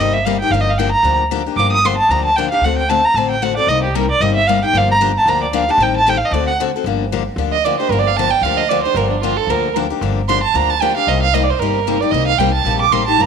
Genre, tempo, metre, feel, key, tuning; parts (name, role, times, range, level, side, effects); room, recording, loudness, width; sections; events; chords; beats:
acoustic string swing (jazz manouche); 228 BPM; 4/4; swing 56% on 8ths; G minor; A4 = 441 Hz
warm violin; melody; 0.0-6.5 s; G4 to Eb6; -15 LUFS; right 2 dB
picked steel-string acoustic guitar; accompaniment; 0.0-13.3 s; C3 to A4; -20 LUFS; left 11 dB
upright bass; bass; 0.0-13.3 s; G1 to D2; -21 LUFS; equal
warm violin; second line; 7.5-13.3 s; D4 to D6; -16 LUFS; right 10 dB
moderate echo chamber reverb, RT60 2.3 s; 1960s-style stereo with parts hard left and right; -13 LUFS; side -6 dB against mid
0.0-6.8 A section; 6.8-13.3 A section
violin solo 0.0-6.8, 6.8-13.3
0.0 Cm7; 0.5 Gm7; 2.6 D7; 3.7 Cm7; 4.7 Gm7; 5.8 Am7b5; 6.3 D7; 6.8 Gm7; 11.1 Cm7
0.26 | 0.52 0.78 1.05 1.31 | 1.57 1.84 2.10 2.37 | 2.63 2.89 3.16 3.42 | 3.68 3.95 4.21 4.48 | 4.74 5.00 5.27 5.53 | 5.79 6.06 6.32 6.59 | 6.85 7.11 7.38 7.64 | 7.91 8.17 8.43 8.70 | 8.96 9.23 9.49 9.75 | 10.02 10.28 10.54 10.81 | 11.07 11.34 11.60 11.86 | 12.13 12.39 12.65 12.92 | 13.18